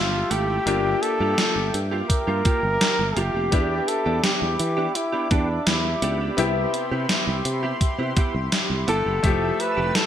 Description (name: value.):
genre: 1980s-style pop.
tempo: 84 BPM.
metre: 4/4.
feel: straight.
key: C major.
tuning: A4 = 440 Hz.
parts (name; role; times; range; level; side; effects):
warm flugelhorn; melody; 0.0-10.1 s; D4 to B4; -25 LUFS; equal; none.
bright grand piano; accompaniment; 0.0-10.1 s; C3 to E5; -29 LUFS; left 5 dB; none.
chorused pulse-width pad; sustained chords; 0.0-10.1 s; G4 to E6; -31 LUFS; right 1 dB; none.
sustaining fretless electric bass; bass; 0.0-9.9 s; F1 to E3; -26 LUFS; equal; none.
direct-recorded clean electric guitar; riff; 0.1-10.1 s; A3 to G4; -30 LUFS; right 3 dB; ensemble chorus, digital delay.
gated 80s digital drum machine; drums; 0.3-10.1 s; hi-hat, kick drum, snare drum; -23 LUFS; equal; gated reverb, gated reverb snare.
room: moderate plate reverb, RT60 1.6 s, digital ambience.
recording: bright 1980s-style digital production.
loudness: -20 LUFS.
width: side -10 dB against mid.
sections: 0.0-10.1 A section.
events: none.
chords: 0.0 Fmaj9; 0.7 Gm7; 3.5 Em7; 6.4 Cmaj7; 9.2 Fmaj9.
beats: | 0.67 1.38 2.09 2.81 | 3.52 4.24 4.95 5.67 | 6.38 7.09 7.81 8.52 | 9.24 9.95.